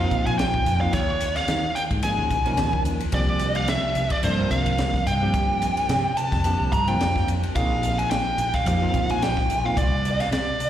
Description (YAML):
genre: electric jazz fusion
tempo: 109 BPM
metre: 4/4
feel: swing 55% on 16ths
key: unclear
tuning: A4 = 444 Hz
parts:
  - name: bluesy overdriven lead guitar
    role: melody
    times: 0.0-10.7 s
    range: C5 to Bb5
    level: -24 LUFS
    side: equal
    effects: distortion, slapback echo
  - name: bell-like tine electric piano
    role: accompaniment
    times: 0.0-9.8 s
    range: F3 to Bb4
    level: -28 LUFS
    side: right 1 dB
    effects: medium stereo tremolo, slapback echo
  - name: mellow fretless electric bass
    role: bass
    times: 0.0-10.5 s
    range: Bb1 to Eb3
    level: -25 LUFS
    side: equal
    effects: none
  - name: crisp fusion drum kit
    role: drums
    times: 0.1-10.7 s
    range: hi-hat, kick drum, ride cymbal, snare drum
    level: -27 LUFS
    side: equal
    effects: none
room: light reverb, small room ambience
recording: live gig heard through the venue's PA, recital hall reverb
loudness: -20 LUFS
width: side -11 dB against mid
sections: 0.0-10.7 A section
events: none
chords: 0.0 Bbsus4; 0.9 Eb9sus4; 3.1 C9sus4; 7.6 Bb9sus4; 9.8 Csus2